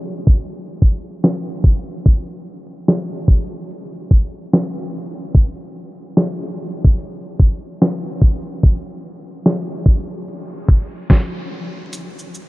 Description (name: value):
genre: hip hop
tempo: 73 BPM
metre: 4/4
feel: swing 63% on 16ths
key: none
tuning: none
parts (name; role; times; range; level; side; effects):
- dusty soul sampler-style drum kit; drums; 0.3-12.5 s; hi-hat, kick drum, shaker, snare drum; -16 LUFS; equal; none
room: light reverb, digital ambience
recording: vinyl crackle, low-pass filter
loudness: -15 LUFS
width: side -20 dB against mid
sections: 0.0-11.9 A section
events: filter sweep 0.0-11.9; break 11.9-12.5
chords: none